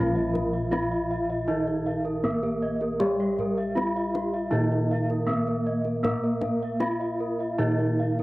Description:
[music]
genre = Javanese gamelan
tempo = 79 BPM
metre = 4/4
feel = straight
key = unclear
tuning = A4 = 440 Hz
[part]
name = gamelan-type bronze metallophone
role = melody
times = 0.0-8.2 s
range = G3+20c to F4-40c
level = -28 LUFS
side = right 1 dB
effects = cassette tape
[part]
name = gamelan-type bronze metallophone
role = accompaniment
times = 0.0-8.2 s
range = Eb3+30c to Bb3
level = -34 LUFS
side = left 1 dB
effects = cassette tape
[part]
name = gamelan-type bossed gongs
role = arpeggios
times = 0.0-8.2 s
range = G4+20c to F5-40c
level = -34 LUFS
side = left 3 dB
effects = cassette tape
[part]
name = gamelan-type bronze metallophone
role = arpeggios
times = 0.0-8.2 s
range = G4+20c to F5-40c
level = -32 LUFS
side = right 2 dB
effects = cassette tape, analog delay
[part]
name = gamelan-type bossed gongs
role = bass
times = 0.0-8.2 s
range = Bb1 to Bb4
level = -29 LUFS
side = equal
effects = none
[part]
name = kendang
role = percussion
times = 0.4-8.2 s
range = none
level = -36 LUFS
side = left 2 dB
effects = none
[sound]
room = moderate spring reverb, RT60 2.1 s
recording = home recording on cassette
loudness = -24 LUFS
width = side -18 dB against mid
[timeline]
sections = 0.0-8.2 A section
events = none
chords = none

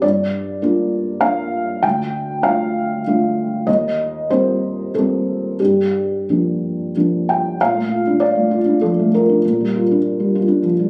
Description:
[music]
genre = neoclassical minimalist piano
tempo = 89-102 BPM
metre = 3/4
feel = rubato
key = G minor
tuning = A4 = 440 Hz
[part]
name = felt-muted upright piano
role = solo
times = 0.0-10.9 s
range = D2 to G5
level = -18 LUFS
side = equal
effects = none
[sound]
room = moderate spring reverb, RT60 1.5 s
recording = recorded on a phone in the room, club reverb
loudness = -18 LUFS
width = mono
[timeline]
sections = 0.0-7.6 A section; 7.6-10.9 B section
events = none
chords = 0.0 Gm7; 1.8 Dm; 3.7 Cm7/Eb; 5.6 Gm7; 7.6 Bbmaj7; 9.4 Gm7/Bb

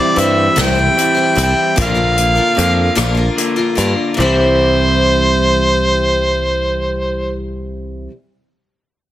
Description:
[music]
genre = folk rock and heartland rock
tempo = 50 BPM (dotted quarters)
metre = 6/8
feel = straight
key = C mixolydian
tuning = A4 = 440 Hz
[part]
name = mellow harmonica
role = melody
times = 0.0-7.4 s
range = C5 to G5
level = -15 LUFS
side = equal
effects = none
[part]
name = picked steel-string acoustic guitar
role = accompaniment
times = 0.0-8.1 s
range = Bb2 to C5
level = -20 LUFS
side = left 3 dB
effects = none
[part]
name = electric guitar through a small old amp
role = riff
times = 0.0-8.1 s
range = Bb2 to F4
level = -20 LUFS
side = right 2 dB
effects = none
[part]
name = picked electric bass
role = bass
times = 0.2-8.1 s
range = Bb1 to G2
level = -18 LUFS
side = equal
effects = none
[part]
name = unplugged drum kit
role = drums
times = 0.2-4.0 s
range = hi-hat, kick drum, rim click, snare drum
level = -22 LUFS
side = left 1 dB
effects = none
[sound]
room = light reverb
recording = dense, heavily limited modern master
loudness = -12 LUFS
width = side -13 dB against mid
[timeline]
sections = 0.0-4.2 A section; 4.2-6.6 B section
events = none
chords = 0.0 C; 1.8 Bb; 4.2 C

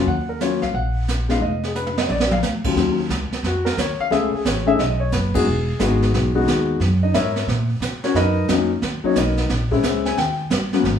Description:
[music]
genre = jazz piano trio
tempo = 178 BPM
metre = 4/4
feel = swing 65% on 8ths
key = Eb minor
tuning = A4 = 439 Hz
[part]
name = warm grand piano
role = melody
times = 0.0-10.8 s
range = Eb2 to Ab5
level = -20 LUFS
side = left 4 dB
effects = none
[part]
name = upright bass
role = bass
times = 0.0-11.0 s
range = E1 to Db3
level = -22 LUFS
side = right 1 dB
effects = none
[part]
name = jazz brush drum kit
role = drums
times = 0.1-11.0 s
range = brushed snare drum, crash cymbal, hi-hat, kick drum, ride cymbal, snare drum, toms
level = -25 LUFS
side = right 3 dB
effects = none
[sound]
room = wet stone room reverb, RT60 0.9 s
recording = band playing live in one room, studio reverb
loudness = -18 LUFS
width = side -8 dB against mid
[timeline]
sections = 0.0-2.8 A section; 2.8-11.0 B section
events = drum fill 1.8-2.4; band accent 5.3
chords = 0.1 Ebm7; 1.4 F7(b5, no3); 2.1 Bb; 2.8 Ebm9; 4.1 Amaj7; 4.8 B6; 5.5 Emaj9; 6.8 Gb7; 8.1 Bmaj7; 9.5 Bbm7b5; 10.2 Eb

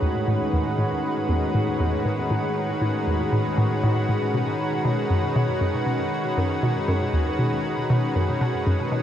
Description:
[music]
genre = ambient, sequencer-driven space music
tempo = 118 BPM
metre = 4/4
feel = straight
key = A lydian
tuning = A4 = 440 Hz
[part]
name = lush unison pad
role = sustained chords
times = 0.0-9.0 s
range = A2 to B4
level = -24 LUFS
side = equal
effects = chorus
[part]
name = hollow square pluck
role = riff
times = 0.0-9.0 s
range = D#2 to B2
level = -24 LUFS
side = equal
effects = chorus, cassette tape, tape echo
[sound]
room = wet huge ambient reverb, RT60 7.8 s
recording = in a vast, echoing space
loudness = -21 LUFS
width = side -10 dB against mid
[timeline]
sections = 0.0-9.0 A section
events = filter sweep on synth arpeggio sound 0.0-9.0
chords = 0.0 Aadd9; 4.3 B

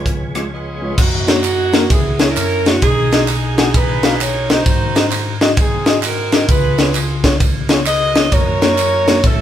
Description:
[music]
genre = uptempo gospel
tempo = 131 BPM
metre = 4/4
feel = swing 65% on 8ths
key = F# major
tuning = A4 = 440 Hz
[part]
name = warm saxophone section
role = melody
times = 0.0-9.4 s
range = A#3 to D#5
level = -18 LUFS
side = right 2 dB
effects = none
[part]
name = mellow tine electric piano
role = accompaniment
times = 0.0-9.4 s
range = A1 to F#5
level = -19 LUFS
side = left 2 dB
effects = medium stereo tremolo
[part]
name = mellow French horn section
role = sustained chords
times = 0.0-1.0 s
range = G#3 to E#4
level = -33 LUFS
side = right 1 dB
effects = none
[part]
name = tonewheel organ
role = sustained chords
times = 0.0-1.0, 8.3-9.4 s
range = E#3 to A#4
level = -28 LUFS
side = right 2 dB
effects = fast rotary speaker, chorus vibrato
[part]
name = crisp fusion drum kit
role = drums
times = 0.1-9.4 s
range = crash cymbal, hi-hat, kick drum, ride cymbal, rim click, snare drum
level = -15 LUFS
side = equal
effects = none
[part]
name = tambourine and handclaps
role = percussion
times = 1.0-9.4 s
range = none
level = -28 LUFS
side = right 6 dB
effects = none
[sound]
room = moderate stone room reverb, RT60 0.9 s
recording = band playing live in one room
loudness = -12 LUFS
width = side -10 dB against mid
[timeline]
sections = 1.0-9.4 A section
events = break 0.5-1.0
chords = 0.0 C#7; 1.0 F#6; 1.9 C#m7; 2.4 F#9; 2.8 B6; 4.7 G#7; 6.5 C#7; 8.3 F#6

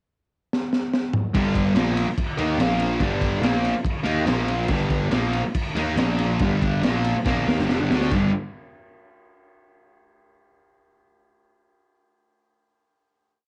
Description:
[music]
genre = garage rock duo or trio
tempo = 141 BPM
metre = 4/4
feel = straight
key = G minor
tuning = A4 = 440 Hz
[part]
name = crunchy breakbeat drum kit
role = drums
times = 0.5-8.2 s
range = crash cymbal, kick drum, ride cymbal, snare drum, toms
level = -27 LUFS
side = equal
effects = vintage 12-bit sampler grit
[part]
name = fuzz guitar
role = riff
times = 1.3-8.3 s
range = F2 to Eb4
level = -25 LUFS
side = equal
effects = distortion, cassette tape
[part]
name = fuzz picked electric bass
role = bass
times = 1.3-8.3 s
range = F1 to Eb2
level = -29 LUFS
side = equal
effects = overdrive
[sound]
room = light reverb, small room ambience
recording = home recording on cassette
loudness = -23 LUFS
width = mono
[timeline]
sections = 0.0-1.3 pickup bar; 1.3-8.1 riff; 8.1-9.8 final chord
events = drum fill 0.5-1.3, 7.3-8.1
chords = 0.0 N.C.; 1.3 Gm; 2.6 Bb5; 3.0 Gm; 4.3 Bb5; 4.7 Gm; 6.0 Bb5; 6.4 Gm; 8.1 G5

